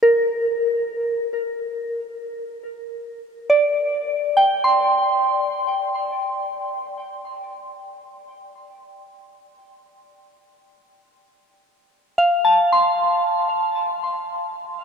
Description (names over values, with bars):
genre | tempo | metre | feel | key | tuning
ambient | free time | none | none | F major | A4 = 439 Hz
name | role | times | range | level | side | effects
soft synth bell | solo | 0.0-6.6, 12.2-14.4 s | Bb4 to C6 | -19 LUFS | equal | chorus, tape echo
room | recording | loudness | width
wet huge ambient reverb, RT60 8.4 s | none | -18 LUFS | side -6 dB against mid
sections
0.0-11.8 A section; 11.8-14.8 B section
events
none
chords
0.0 N.C.; 1.3 D7sus4; 6.5 N.C.; 11.8 F